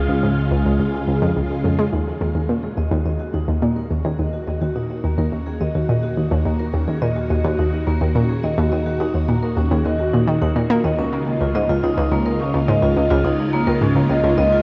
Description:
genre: ambient, sequencer-driven space music.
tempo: 106 BPM.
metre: 4/4.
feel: straight.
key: Eb minor.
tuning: A4 = 442 Hz.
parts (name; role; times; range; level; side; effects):
lightly driven lead guitar; melody; 0.0-1.3 s; F5; -37 LUFS; equal; analog delay.
phased string machine; sustained chords; 0.0-14.6 s; Db3 to Gb4; -28 LUFS; equal; ensemble chorus, phaser.
analog pluck; riff; 0.0-14.5 s; Db2 to Bb3; -22 LUFS; equal; chorus, analog delay.
analog drone; bass; 0.0-14.6 s; Db2 to Eb2; -32 LUFS; equal; none.
pulsing gated texture; texture; 0.0-1.9 s; Ab4 to Ab5; -40 LUFS; equal; none.
vibraphone with medium hard mallets; arpeggios; 1.9-14.6 s; Bb3 to Eb5; -26 LUFS; equal; analog delay.
room: wet huge ambient reverb, RT60 8.4 s.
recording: worn, warbling old tape, cassette tape, warbly pitch drift, nothing above 7.8 kHz.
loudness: -20 LUFS.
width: mono.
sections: 0.0-1.9 A section; 1.9-14.6 B section.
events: filter sweep on synth arpeggio sound 0.0-1.9; fade-in on vibraphone 1.9-14.6; fade-in on string machine 1.9-14.6.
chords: 0.0 Db; 1.9 Ebm; 11.0 Db.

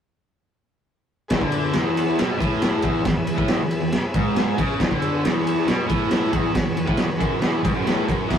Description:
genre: garage rock duo or trio.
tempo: 138 BPM.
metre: 4/4.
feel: straight.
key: E mixolydian.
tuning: A4 = 440 Hz.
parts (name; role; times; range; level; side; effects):
combo organ; sustained chords; 1.3-8.4 s; G#4 to G#5; -31 LUFS; left 1 dB; none.
cranked stack guitar; riff; 1.3-8.4 s; E2 to E4; -22 LUFS; equal; overdrive.
raw garage drum kit; drums; 1.3-8.4 s; crash cymbal, kick drum, ride cymbal, snare drum; -22 LUFS; equal; none.
room: wet booth ambience, RT60 0.2 s.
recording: rough rehearsal-room recording.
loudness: -19 LUFS.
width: side -8 dB against mid.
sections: 1.3-8.3 A section.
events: transistor combo organ fill 4.1-4.8.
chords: 1.3 E.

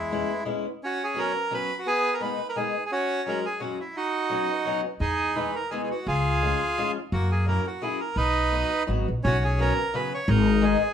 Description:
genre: musette waltz.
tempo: 172 BPM.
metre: 3/4.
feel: swing 53% on 8ths.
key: B major.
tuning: A4 = 440 Hz.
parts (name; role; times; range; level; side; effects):
bandoneon; melody; 0.0-10.9 s; G#3 to C#5; -26 LUFS; right 2 dB; none.
upright bass; bass; 0.0-0.2, 5.0-10.7 s; G#1 to F#2; -24 LUFS; left 1 dB; none.
picked old ladder-braced acoustic guitar; accompaniment; 0.1-10.8 s; C#3 to F#4; -30 LUFS; left 4 dB; none.
room: moderate studio reverb, RT60 0.7 s.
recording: band playing live in one room.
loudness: -23 LUFS.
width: side -8 dB against mid.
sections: 0.8-9.2 A section; 9.2-10.9 A section.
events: none.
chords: 0.0 E6; 0.8 Bsus2; 1.9 G#madd9; 2.9 F#sus2; 3.9 Badd9; 5.0 Emaj7; 6.1 C#; 7.1 F#7; 8.2 B; 9.2 Bsus2; 10.3 G#madd9.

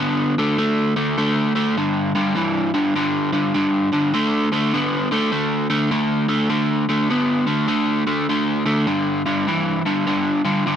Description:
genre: rock.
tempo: 101 BPM.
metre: 4/4.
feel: swing 64% on 8ths.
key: unclear.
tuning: A4 = 440 Hz.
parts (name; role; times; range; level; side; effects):
overdriven electric guitar; solo; 0.0-10.8 s; G2 to B3; -17 LUFS; equal; none.
room: digital ambience.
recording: dry, close 1970s-style studio recording.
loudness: -17 LUFS.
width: side -8 dB against mid.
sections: 0.0-10.8 A section.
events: none.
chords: 0.0 D5; 1.8 G5; 4.1 D5; 8.9 G5.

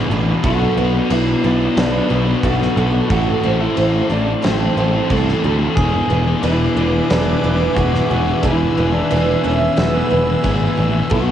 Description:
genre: rock, shoegaze and dream pop.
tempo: 90 BPM.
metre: 4/4.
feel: straight.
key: E mixolydian.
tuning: A4 = 441 Hz.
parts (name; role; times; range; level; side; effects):
electric guitar through a small old amp; melody; 0.0-11.3 s; B3 to G#4; -23 LUFS; equal; cassette tape, tape echo.
picked twelve-string acoustic guitar; arpeggios; 0.0-11.3 s; G#4 to E5; -24 LUFS; right 4 dB; ensemble chorus, tape echo.
overdriven semi-hollow guitar; riff; 0.0-11.3 s; A2 to B4; -25 LUFS; right 12 dB; reverse reverb.
thick fuzz guitar; riff; 0.0-11.3 s; E2 to B3; -21 LUFS; left 7 dB; distortion, lush chorus.
picked electric bass; bass; 0.1-11.3 s; E1 to D2; -19 LUFS; equal; none.
big rock drum kit; drums; 0.4-11.3 s; crash cymbal, kick drum, snare drum; -24 LUFS; equal; cassette tape.
airy breathy pad; sustained chords; 6.1-11.3 s; B4 to E6; -24 LUFS; right 1 dB; chorus.
room: little or no reverb.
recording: home recording on cassette.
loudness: -14 LUFS.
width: side -10 dB against mid.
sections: 0.0-11.3 A section.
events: none.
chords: 0.4 Bm7; 3.1 Am; 5.8 E7.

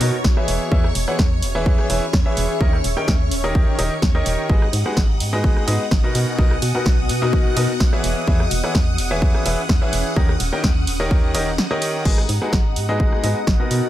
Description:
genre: piano house.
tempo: 127 BPM.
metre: 4/4.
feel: straight.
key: G# minor.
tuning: A4 = 440 Hz.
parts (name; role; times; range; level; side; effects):
string machine, violins; sustained chords; 0.0-13.9 s; C#5 to D#6; -29 LUFS; equal; ensemble chorus, sidechain pumping.
bright baby grand piano; riff; 0.0-13.9 s; B2 to G5; -24 LUFS; equal; vintage 12-bit sampler grit, sidechain pumping, dub echo.
organ-like FM bass; bass; 0.0-13.8 s; D#1 to B2; -23 LUFS; equal; sidechain pumping.
punchy analog drum machine; drums; 0.0-13.8 s; crash cymbal, hi-hat, ride cymbal, rim click, snare drum; -25 LUFS; right 1 dB; none.
granular cloud pad; texture; 0.0-13.9 s; B3 to B5; -28 LUFS; left 2 dB; built-in reverb, sidechain pumping.
electronic kick drum; drums; 0.2-13.6 s; none; -18 LUFS; equal; overdrive.
room: digital ambience.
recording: none.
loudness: -16 LUFS.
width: side -13 dB against mid.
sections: 0.0-12.1 A section; 12.1-13.9 B section.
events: drop 0.0-12.1; break 11.6-12.1.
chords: 0.5 E6; 2.6 D#7; 4.5 G#m7; 6.1 Bmaj7; 8.0 E6; 10.2 D#7; 12.1 G#m7.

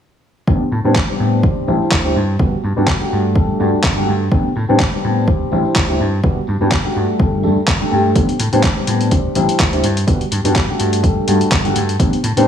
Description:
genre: filtered disco house.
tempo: 125 BPM.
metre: 4/4.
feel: swing 55% on 16ths.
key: unclear.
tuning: A4 = 441 Hz.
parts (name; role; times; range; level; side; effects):
dark baby grand piano; accompaniment; 0.5-12.5 s; G3 to A4; -17 LUFS; left 1 dB; phaser, sidechain pumping, low-pass filter.
vintage slap bass; bass; 0.5-12.5 s; G1 to A2; -19 LUFS; equal; sidechain pumping, low-pass filter.
electronic kick drum; drums; 0.5-12.1 s; none; -17 LUFS; equal; studio reverb.
tambourine; percussion; 0.5-12.5 s; none; -49 LUFS; equal; none.
dusty soul sampler-style drum kit; drums; 1.0-12.5 s; handclaps, hi-hat; -21 LUFS; equal; studio reverb, sidechain pumping on hats.
room: light reverb, studio reverb.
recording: small room ambience.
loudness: -13 LUFS.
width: side -8 dB against mid.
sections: 0.5-12.5 A section.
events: filter sweep 0.5-12.5.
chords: 0.5 Am11; 1.4 D9sus4; 2.2 Gmaj7; 3.1 Dadd11/G; 4.3 Am11; 5.3 D9sus4; 6.0 Gmaj7; 7.0 Gsus2; 8.2 Am11; 9.1 D9sus4; 9.8 Gmaj7; 10.8 Dadd11/G.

